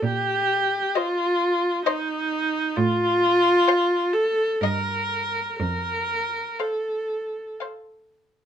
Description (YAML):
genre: classical, slow romantic movement for string quartet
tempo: 59-67 BPM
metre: 3/4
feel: rubato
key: unclear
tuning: A4 = 440 Hz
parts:
  - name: warm viola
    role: accompaniment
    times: 0.0-7.6 s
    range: Eb4 to Bb4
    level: -22 LUFS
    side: equal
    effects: none
  - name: warm cello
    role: bass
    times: 0.0-6.4 s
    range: F2 to Bb2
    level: -28 LUFS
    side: right 4 dB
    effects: none
  - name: rich violin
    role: melody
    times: 1.0-8.4 s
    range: Eb5 to F5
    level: -28 LUFS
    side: left 8 dB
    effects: none
  - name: rich violin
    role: second line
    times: 1.0-8.4 s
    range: C5 to Eb5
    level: -28 LUFS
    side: left 5 dB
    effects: none
room: moderate small room reverb, RT60 0.6 s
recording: minimal, uncompressed stereo recording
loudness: -21 LUFS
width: side -9 dB against mid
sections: 0.0-8.5 A section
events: none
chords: 0.0 Cm7/Bb; 2.8 F/A; 4.6 Eb/G; 5.6 F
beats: | 0.03 0.96 1.86 | 2.77 3.68 4.62 | 5.59 6.59 7.60